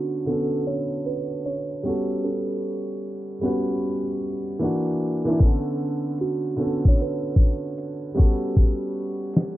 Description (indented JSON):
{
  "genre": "lo-fi hip hop",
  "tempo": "76 BPM",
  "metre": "4/4",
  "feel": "swing 66% on 16ths",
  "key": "B minor",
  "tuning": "A4 = 441 Hz",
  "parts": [
    { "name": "kalimba", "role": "melody", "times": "0.0-9.6 s", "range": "F#4 to C#5", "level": "-30 LUFS", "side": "right 3 dB", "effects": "low-pass filter, tape echo" },
    { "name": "clear upright piano", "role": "accompaniment", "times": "0.0-9.6 s", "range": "D3 to B4", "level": "-25 LUFS", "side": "equal", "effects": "cassette tape, low-pass filter" },
    { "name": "lo-fi sampler-style drum kit", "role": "drums", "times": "5.4-9.6 s", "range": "hi-hat, kick drum, snare drum", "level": "-17 LUFS", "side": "equal", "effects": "none" }
  ],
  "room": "small room ambience",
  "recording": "low-pass filter",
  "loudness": "-22 LUFS",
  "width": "side -15 dB against mid",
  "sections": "0.0-9.6 A section",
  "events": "filter sweep 0.0-9.6",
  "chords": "0.0 Bm9; 1.9 A13; 4.6 F#7b13; 5.4 Bm9; 8.2 A13"
}